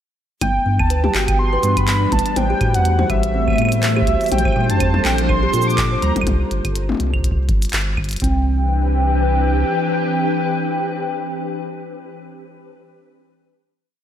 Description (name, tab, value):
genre	IDM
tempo	123 BPM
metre	4/4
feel	swing 56% on 16ths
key	C major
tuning	A4 = 444 Hz
part	warm velvety synth lead	melody	0.4-12.2 s	E5 to D6	-22 LUFS	equal	chorus, diffuse ambient delay
part	glassy FM pad	sustained chords	0.4-12.5 s	E3 to C5	-24 LUFS	left 2 dB	ensemble chorus, built-in reverb
part	buzzing kalimba	arpeggios	0.4-8.4 s	G3 to C5	-25 LUFS	right 2 dB	vintage 12-bit sampler grit, analog delay
part	warm sub bass	bass	0.4-9.6 s	G1 to Bb2	-19 LUFS	equal	none
part	electronic kick drum	drums	0.4-8.3 s	none	-23 LUFS	equal	none
part	glitchy drum kit	drums	0.4-8.3 s	cabasa, claves, handclaps, hi-hat, toms	-24 LUFS	left 2 dB	overdrive, analog delay
part	bubbling stepped-filter texture	texture	4.3-6.3 s	C5	-32 LUFS	right 3 dB	chorus, built-in reverb
room	moderate plate reverb, RT60 2.1 s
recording	dreamy mix soaked in reverb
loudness	-16 LUFS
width	side -10 dB against mid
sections	0.4-8.2 chorus; 8.2-12.1 final chord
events	none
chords	0.4 G6; 2.4 Am7; 4.3 Bbmaj9; 6.3 C5; 8.2 Cmaj9